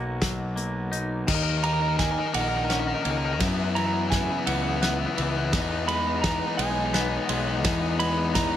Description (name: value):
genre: post-rock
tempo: 56 BPM (dotted quarters)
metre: 6/8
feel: straight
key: E lydian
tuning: A4 = 440 Hz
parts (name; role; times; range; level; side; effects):
- clean lap steel guitar; melody; 0.0-8.6 s; D#5 to B5; -30 LUFS; right 4 dB; slapback echo
- semi-hollow electric guitar; arpeggios; 0.0-8.6 s; F#2 to F#4; -31 LUFS; left 1 dB; slapback echo
- fuzz picked electric bass; bass; 0.0-8.5 s; A#1 to F#2; -29 LUFS; equal; overdrive
- loose indie drum kit; drums; 0.2-8.5 s; crash cymbal, hi-hat, kick drum, ride cymbal, snare drum; -29 LUFS; equal; none
- fuzz guitar; riff; 1.3-8.6 s; B3 to A#4; -28 LUFS; left 6 dB; distortion
room: light reverb, studio reverb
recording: none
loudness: -23 LUFS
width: side -10 dB against mid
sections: 0.0-1.3 A section; 1.3-8.6 B section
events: build-up 1.3-8.6; drum fill 1.3-8.6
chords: 0.0 Bmaj7; 1.3 D#m7; 3.4 F#7sus4; 5.5 Emaj7